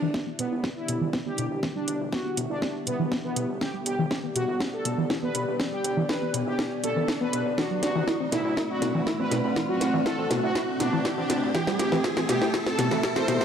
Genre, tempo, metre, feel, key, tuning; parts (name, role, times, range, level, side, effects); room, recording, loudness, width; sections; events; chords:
melodic techno; 121 BPM; 4/4; straight; E minor; A4 = 440 Hz
analog synth brass; melody; 0.0-13.4 s; B3 to C5; -30 LUFS; equal; chorus, sidechain pumping, analog delay
dark analog pad; sustained chords; 0.0-13.4 s; A3 to E5; -33 LUFS; equal; chorus, sidechain pumping
tight sequenced synth; arpeggios; 0.0-13.4 s; B2 to E4; -31 LUFS; equal; chorus, phaser, sidechain pumping, analog delay
gritty driven synth bass; bass; 0.0-13.4 s; D1 to D2; -38 LUFS; equal; sidechain pumping, high-pass filter
riser; sound effects; 0.0-13.4 s; -37 LUFS; equal
deep dark ambient pad; texture; 0.0-13.4 s; B3 to F#5; -33 LUFS; equal; chorus, built-in reverb, sidechain pumping
electronic kick drum; drums; 0.1-13.1 s; -35 LUFS; equal; high-pass filter on kick
house drum kit; drums; 0.1-13.4 s; hi-hat, snare drum; -29 LUFS; equal
moderate lush hall reverb, RT60 2.1 s; dry, gritty hardware recording; -24 LUFS; side -8 dB against mid
0.0-13.4 A section
build-up 0.0-13.4; drum fill 0.0-13.4; riser 0.0-13.4; filter sweep on synth arpeggio sound 0.0-13.4
0.0 Em7; 7.6 D7; 11.5 C6